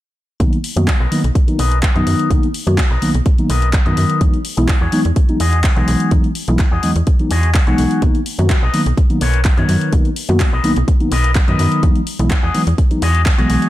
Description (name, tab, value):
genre	filtered disco house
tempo	126 BPM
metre	4/4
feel	straight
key	B major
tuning	A4 = 440 Hz
part	mellow tine electric piano	accompaniment	0.4-13.7 s	D#3 to F#4	-18 LUFS	equal	phaser, sidechain pumping, low-pass filter
part	slap-like FM bass	bass	0.4-13.6 s	B1 to F#2	-17 LUFS	equal	sidechain pumping, low-pass filter
part	electronic kick drum	drums	0.4-13.4 s	none	-14 LUFS	equal	none
part	house drum kit	drums	0.4-13.7 s	handclaps, hi-hat	-25 LUFS	left 1 dB	sidechain pumping on hats
part	electric guitar with an envelope filter	riff	0.8-13.7 s	F#4 to F#5	-22 LUFS	left 4 dB	sidechain pumping, low-pass filter
room	little or no reverb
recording	none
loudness	-13 LUFS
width	side -15 dB against mid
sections	0.4-13.7 A section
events	filter sweep 0.4-13.7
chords	0.4 Bmaj7; 4.2 Emaj9; 8.0 Bmaj7; 11.8 Emaj9